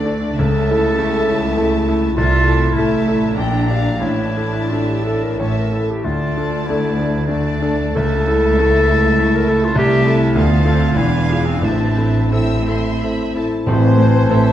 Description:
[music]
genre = classical, romantic movement for piano and orchestra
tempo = 85-106 BPM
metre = 3/4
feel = rubato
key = A minor from 9.8 s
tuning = A4 = 440 Hz
[part]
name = bright concert grand piano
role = melody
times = 0.0-14.5 s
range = A1 to D5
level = -18 LUFS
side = left 1 dB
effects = none
[part]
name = rich symphonic violin section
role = melody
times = 0.0-14.5 s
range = D5 to E6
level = -32 LUFS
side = equal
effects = none
[part]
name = clear clarinet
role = second line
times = 0.0-14.5 s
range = E3 to C#5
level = -20 LUFS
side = left 1 dB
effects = none
[part]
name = rich chamber violin section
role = second line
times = 0.0-14.5 s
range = C5 to G5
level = -28 LUFS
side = left 2 dB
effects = none
[part]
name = warm symphonic viola section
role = accompaniment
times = 0.0-14.4 s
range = A3 to D4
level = -25 LUFS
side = right 2 dB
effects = none
[part]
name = clear symphonic cello section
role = bass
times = 0.0-14.5 s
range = C2 to D3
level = -23 LUFS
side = right 2 dB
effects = none
[part]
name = clear symphonic double bass section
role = bass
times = 0.0-14.5 s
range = E1 to D2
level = -22 LUFS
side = right 2 dB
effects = none
[part]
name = timpani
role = percussion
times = 11.6-14.5 s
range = A2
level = -26 LUFS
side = equal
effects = none
[part]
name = hollow concert flute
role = second line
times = 13.7-14.5 s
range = A5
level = -25 LUFS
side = left 1 dB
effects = none
[part]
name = warm oboe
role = second line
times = 13.7-14.5 s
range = C5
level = -28 LUFS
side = right 1 dB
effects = none
[part]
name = dark French horn section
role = sustained chords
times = 13.7-14.5 s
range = C4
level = -18 LUFS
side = left 4 dB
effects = none
[sound]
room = wet scoring stage reverb, RT60 1.5 s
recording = dark, warm production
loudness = -14 LUFS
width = side -11 dB against mid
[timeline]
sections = 0.0-13.7 A section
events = none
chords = 0.4 A/C#; 2.2 Am/C; 3.3 Gm/Bb; 4.0 Asus4; 5.4 A5; 6.0 Dm; 8.0 A/C#; 9.8 Am/C; 10.4 Bm7b5/D; 11.0 E7b9; 11.6 Am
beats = | 0.39 0.99 1.56 | 2.15 2.74 3.35 | 3.99 4.69 5.38 | 6.04 6.67 7.28 | 7.96 8.59 9.19 | 9.77 10.36 10.97 | 11.62 12.32 13.01 | 13.67 14.28

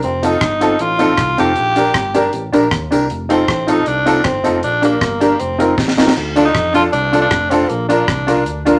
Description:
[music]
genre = ska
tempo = 156 BPM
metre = 4/4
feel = straight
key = F mixolydian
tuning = A4 = 440 Hz
[part]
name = raspy tenor saxophone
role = melody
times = 0.0-8.6 s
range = Bb3 to G4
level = -20 LUFS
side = equal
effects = none
[part]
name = fingered electric bass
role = bass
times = 0.0-8.8 s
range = F1 to F2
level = -26 LUFS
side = equal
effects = none
[part]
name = deep reggae drum kit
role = drums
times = 0.0-8.8 s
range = crash cymbal, hi-hat, kick drum, rim click, snare drum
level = -22 LUFS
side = equal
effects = none
[part]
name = hollow-body jazz guitar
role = accompaniment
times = 0.2-8.8 s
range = C4 to Bb4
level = -22 LUFS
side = equal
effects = none
[part]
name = honky-tonk upright piano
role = stabs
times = 0.2-8.8 s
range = D4 to Bb4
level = -20 LUFS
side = equal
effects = none
[part]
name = tambourine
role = percussion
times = 0.2-8.8 s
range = none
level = -41 LUFS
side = equal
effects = none
[sound]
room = moderate studio reverb, RT60 0.6 s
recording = none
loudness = -15 LUFS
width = mono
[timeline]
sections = 0.0-6.2 A section; 6.2-8.8 B section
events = drum fill 5.8-6.2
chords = 0.0 F7; 1.6 Bb6; 3.1 F7; 4.6 Bb6; 5.4 F7sus4; 6.2 Dm; 7.7 Bb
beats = | 0.03 0.41 0.80 1.18 | 1.56 1.95 2.33 2.71 | 3.10 3.48 3.87 4.25 | 4.63 5.01 5.40 5.78 | 6.17 6.55 6.93 7.32 | 7.70 8.08 8.46

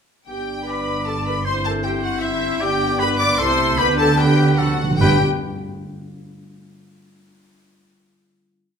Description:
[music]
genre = quick classical-period movement for symphony orchestra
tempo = 152 BPM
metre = 3/4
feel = straight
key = G major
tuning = A4 = 441 Hz
[part]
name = rich studio violin section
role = melody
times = 0.3-5.2 s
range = E5 to D6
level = -24 LUFS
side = left 5 dB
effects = none
[part]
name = rich chamber violin section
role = second line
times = 0.3-5.2 s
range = E5 to D6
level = -28 LUFS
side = left 2 dB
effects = none
[part]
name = rich chamber viola section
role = accompaniment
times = 0.3-5.2 s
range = E4 to D5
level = -24 LUFS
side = right 3 dB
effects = none
[part]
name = mellow French horn section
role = sustained chords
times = 0.3-5.2 s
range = A3 to E4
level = -26 LUFS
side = left 4 dB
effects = none
[part]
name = dark chamber cello section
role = bass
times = 0.3-5.2 s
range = G2 to D3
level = -24 LUFS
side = right 3 dB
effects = none
[part]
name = dark chamber double bass section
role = bass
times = 0.3-5.2 s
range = G1 to D2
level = -25 LUFS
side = right 3 dB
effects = none
[part]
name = clear oboe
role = second line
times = 0.7-5.2 s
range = G4 to D5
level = -26 LUFS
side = equal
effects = none
[part]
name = timpani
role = percussion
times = 4.6-5.2 s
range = G2 to D3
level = -26 LUFS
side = equal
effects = none
[sound]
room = wet recital hall reverb, RT60 1.3 s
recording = minimal, uncompressed stereo recording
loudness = -16 LUFS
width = side -6 dB against mid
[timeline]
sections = 0.3-5.0 A section; 5.0-6.2 final chord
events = timpani fill 4.6-5.0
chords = 0.3 G; 1.5 C/G; 2.6 G; 3.4 Am/C; 3.8 G/D; 4.6 D7; 5.0 G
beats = | 0.28 0.68 1.07 | 1.46 1.84 2.23 | 2.61 3.00 3.39 | 3.79 4.18 4.59 | 5.01

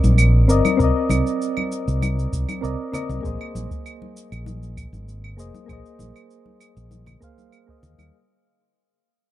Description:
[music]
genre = sunset chillout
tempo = 98 BPM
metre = 4/4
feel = straight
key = unclear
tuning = A4 = 440 Hz
[part]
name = soft electric-piano-like synth keys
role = accompaniment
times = 0.0-8.2 s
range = Bb3 to F5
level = -24 LUFS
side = moving between left 6 dB and right 5 dB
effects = chorus, auto-pan, low-pass filter, tape echo
[part]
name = fretless electric bass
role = bass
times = 0.0-8.1 s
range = F1 to Eb2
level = -20 LUFS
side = equal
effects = tube saturation, wide subtle chorus
[part]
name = shaker and claves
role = drums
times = 0.0-8.1 s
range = none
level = -29 LUFS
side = right 4 dB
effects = none
[part]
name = congas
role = percussion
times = 0.0-8.1 s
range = none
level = -29 LUFS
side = left 3 dB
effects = none
[part]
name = electronic kick drum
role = drums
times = 0.8-7.8 s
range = none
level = -25 LUFS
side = equal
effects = none
[sound]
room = little or no reverb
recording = dark, warm production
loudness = -18 LUFS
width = side -14 dB against mid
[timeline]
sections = 0.0-8.1 A section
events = fade-out 0.0-8.1; filter sweep on synth keys 0.0-8.1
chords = 0.0 Cm9; 3.2 Bb9sus4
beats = 0.18 | 0.79 1.40 2.02 2.63 | 3.24 3.85 4.46 5.08 | 5.69 6.30 6.91 7.53

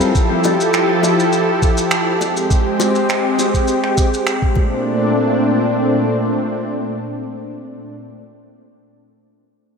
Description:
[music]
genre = sunset chillout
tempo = 102 BPM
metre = 4/4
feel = straight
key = Bb major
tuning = A4 = 439 Hz
[part]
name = lush unison pad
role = sustained chords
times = 0.0-8.0 s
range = Bb2 to A4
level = -16 LUFS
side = equal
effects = chorus
[part]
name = shaker and finger snaps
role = drums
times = 0.0-4.4 s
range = none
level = -24 LUFS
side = right 2 dB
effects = none
[part]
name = electronic kick drum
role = drums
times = 0.2-4.7 s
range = none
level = -16 LUFS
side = equal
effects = none
[part]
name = bongos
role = percussion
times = 0.5-4.7 s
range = none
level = -27 LUFS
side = left 5 dB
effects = none
[sound]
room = moderate plate reverb, RT60 3.5 s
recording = dreamy mix soaked in reverb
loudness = -14 LUFS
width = side -5 dB against mid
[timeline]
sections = 0.0-4.9 A section; 4.9-7.2 B section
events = none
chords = 0.0 Fmaj9; 2.2 Abmaj7; 4.6 Bbmaj9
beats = | 0.15 0.74 1.32 1.91 | 2.50 3.09 3.68 4.27 | 4.85 5.44 6.03 6.62

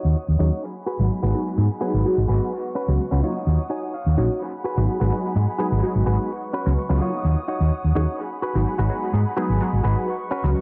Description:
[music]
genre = house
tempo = 127 BPM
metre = 4/4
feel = straight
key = G# minor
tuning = A4 = 440 Hz
[part]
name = muted studio string section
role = sustained chords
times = 0.0-10.6 s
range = G#4 to D#6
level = -36 LUFS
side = equal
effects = low-pass filter
[part]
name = direct-recorded clean electric guitar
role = riff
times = 0.0-10.5 s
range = C#4 to G#5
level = -32 LUFS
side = equal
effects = low-pass filter, dub echo
[part]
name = hollow-body short-scale fingered electric bass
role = bass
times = 0.0-10.5 s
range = G#1 to G#2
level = -22 LUFS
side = equal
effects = low-pass filter
[part]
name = funky polysynth comp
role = accompaniment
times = 0.4-10.6 s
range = F#3 to G#4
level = -29 LUFS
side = equal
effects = chorus, phaser, low-pass filter, dub echo
[sound]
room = light reverb, digital ambience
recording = echo-heavy mix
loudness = -22 LUFS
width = mono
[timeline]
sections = 0.0-10.6 A section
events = filter sweep 0.0-10.6; clean electric guitar fill 3.5-4.4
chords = 0.0 D#m7; 0.6 G#m7; 2.5 C#7sus4; 3.2 D#m7; 4.4 G#m7; 6.3 C#7sus4; 7.0 D#m7; 8.2 G#m7; 10.1 C#7sus4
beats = 0.16 | 0.63 1.10 1.58 2.05 | 2.52 2.99 3.47 3.94 | 4.41 4.88 5.36 5.83 | 6.30 6.77 7.25 7.72 | 8.19 8.66 9.13 9.61 | 10.08 10.55

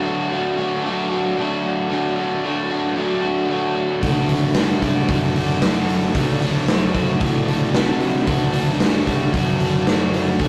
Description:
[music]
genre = garage rock duo or trio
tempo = 113 BPM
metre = 4/4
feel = straight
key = D major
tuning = A4 = 440 Hz
[part]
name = crunchy overdriven guitar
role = riff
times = 0.0-10.5 s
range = D3 to F#4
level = -23 LUFS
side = equal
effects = none
[part]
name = growling picked electric bass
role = bass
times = 4.0-10.5 s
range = D2 to C3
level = -26 LUFS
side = equal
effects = overdrive
[part]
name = raw garage drum kit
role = drums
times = 4.0-10.5 s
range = hi-hat, kick drum, snare drum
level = -22 LUFS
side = equal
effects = none
[sound]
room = moderate stone room reverb, RT60 1.2 s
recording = rough rehearsal-room recording, tube saturation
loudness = -20 LUFS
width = mono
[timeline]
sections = 0.0-10.5 A section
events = none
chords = 0.0 D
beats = 0.30 0.83 1.36 | 1.90 2.43 2.96 3.49 | 4.02 4.56 5.09 5.62 | 6.15 6.68 7.21 7.74 | 8.28 8.80 9.34 9.87 | 10.39

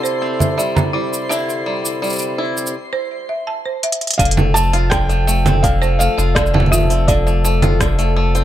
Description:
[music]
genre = folktronica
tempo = 83 BPM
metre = 4/4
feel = straight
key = F major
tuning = A4 = 440 Hz
[part]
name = folk marimba with medium hard mallets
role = second line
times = 0.0-7.3 s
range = E4 to Bb5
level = -24 LUFS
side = right 2 dB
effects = ping-pong delay
[part]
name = pedal harmonium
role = sustained chords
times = 0.0-8.4 s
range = C3 to D5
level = -25 LUFS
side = equal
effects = none
[part]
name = bluegrass banjo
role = arpeggios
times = 0.0-8.4 s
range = D3 to F4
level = -22 LUFS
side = left 2 dB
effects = digital delay
[part]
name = twinkling granular texture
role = texture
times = 0.0-2.7 s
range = C5 to C6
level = -31 LUFS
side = left 1 dB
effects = built-in reverb
[part]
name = organic electronic drum kit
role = drums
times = 0.1-8.4 s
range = cabasa, congas, hi-hat, rim click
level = -18 LUFS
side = right 2 dB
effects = overdrive
[part]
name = felt-muted upright piano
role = melody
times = 4.2-8.4 s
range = D5 to A5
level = -21 LUFS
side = right 1 dB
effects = digital delay
[part]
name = warm sub bass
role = bass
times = 4.2-8.4 s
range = F1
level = -16 LUFS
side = equal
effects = none
[part]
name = electronic kick drum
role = drums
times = 4.2-8.0 s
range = none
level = -19 LUFS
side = equal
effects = overdrive
[sound]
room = studio ambience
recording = none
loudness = -14 LUFS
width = side -12 dB against mid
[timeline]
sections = 0.0-4.2 A section; 4.2-8.4 B section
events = drum fill 3.8-4.2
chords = 0.0 Cadd9; 4.2 F6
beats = 0.58 | 1.30 2.02 2.75 3.47 | 4.19 4.92 5.64 6.36 | 7.09 7.81

